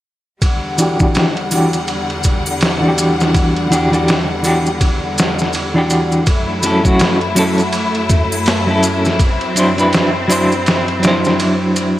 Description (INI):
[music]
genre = trip hop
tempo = 82 BPM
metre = 4/4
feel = swing 60% on 16ths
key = E minor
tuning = A4 = 440 Hz
[part]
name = bright studio string section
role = sustained chords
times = 0.4-12.0 s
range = E2 to F#5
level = -19 LUFS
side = left 1 dB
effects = none
[part]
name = trip hop sampler-style drum kit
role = drums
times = 0.4-12.0 s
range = kick drum, ride cymbal, snare drum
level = -18 LUFS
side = equal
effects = none
[part]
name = maracas and triangle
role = percussion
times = 0.4-11.9 s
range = none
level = -24 LUFS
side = equal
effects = none
[part]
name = semi-hollow electric guitar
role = accompaniment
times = 0.8-12.0 s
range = E3 to C5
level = -16 LUFS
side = equal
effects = tremolo, low-pass filter, tape echo
[sound]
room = light reverb, digital ambience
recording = none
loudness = -12 LUFS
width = side -14 dB against mid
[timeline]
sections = 0.4-12.0 A section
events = filter sweep on clean electric guitar 0.4-12.0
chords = 0.4 Em9; 6.3 F#m7; 9.2 D7/F#